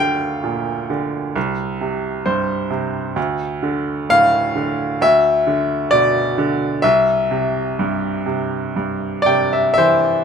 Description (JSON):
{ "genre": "classical, lyrical solo piano", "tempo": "58-67 BPM", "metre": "4/4", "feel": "rubato", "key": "unclear", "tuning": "A4 = 438 Hz", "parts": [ { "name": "bright baby grand piano", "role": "solo", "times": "0.0-10.2 s", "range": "C2 to G5", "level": "-16 LUFS", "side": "equal", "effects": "none" } ], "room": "moderate studio reverb, RT60 0.8 s", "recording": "minimal, uncompressed stereo recording", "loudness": "-16 LUFS", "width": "side -6 dB against mid", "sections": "0.0-10.2 A section", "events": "grand piano fill 1.8-3.2, 8.8-10.2", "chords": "0.0 Gm/D; 1.4 C5; 3.2 Dm; 5.0 Bmadd11/D; 6.8 C" }